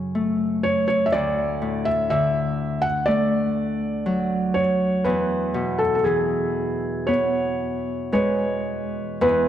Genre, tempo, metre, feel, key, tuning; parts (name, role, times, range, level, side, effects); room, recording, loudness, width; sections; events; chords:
celtic folk, Celtic slow air; 56-62 BPM; 4/4; rubato; E mixolydian; A4 = 440 Hz
Celtic harp; accompaniment; 0.0-9.5 s; D2 to C#4; -24 LUFS; left 1 dB
felt-muted upright piano; melody; 0.6-9.5 s; G#4 to F#5; -22 LUFS; right 1 dB
wet church reverb, RT60 2.7 s; dark, warm production; -20 LUFS; side -10 dB against mid
0.0-9.2 A section
0.0 F#m; 1.1 D; 5.0 E